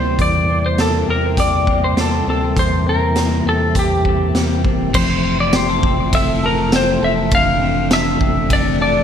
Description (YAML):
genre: dream pop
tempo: 101 BPM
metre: 4/4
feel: straight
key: F major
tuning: A4 = 440 Hz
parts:
  - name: clean lap steel guitar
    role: melody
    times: 0.0-9.0 s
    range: G4 to F5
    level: -18 LUFS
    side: left 1 dB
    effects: lush chorus, ping-pong delay
  - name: mellow tonewheel organ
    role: sustained chords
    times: 0.0-9.0 s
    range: C3 to E4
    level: -22 LUFS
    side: right 1 dB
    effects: chorus vibrato, lush chorus
  - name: clean electric guitar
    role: arpeggios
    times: 0.0-9.0 s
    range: F2 to A4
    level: -22 LUFS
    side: left 4 dB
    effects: lush chorus, ping-pong delay
  - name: warm sub bass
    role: bass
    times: 0.0-9.0 s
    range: E1 to E2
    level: -23 LUFS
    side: equal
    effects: none
  - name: raw garage drum kit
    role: drums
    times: 0.2-8.6 s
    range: crash cymbal, hi-hat, kick drum, ride cymbal, snare drum, tambourine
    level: -20 LUFS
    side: equal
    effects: gated reverb
room: moderate plate reverb, RT60 1.8 s, studio ambience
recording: bright 1980s-style digital production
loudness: -14 LUFS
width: side -8 dB against mid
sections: 0.0-4.9 A section; 4.9-9.0 B section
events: none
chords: 0.0 C7; 4.9 Fmaj7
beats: | 0.19 0.78 1.38 1.97 | 2.56 3.16 3.75 4.35 | 4.94 5.53 6.13 6.72 | 7.32 7.91 8.50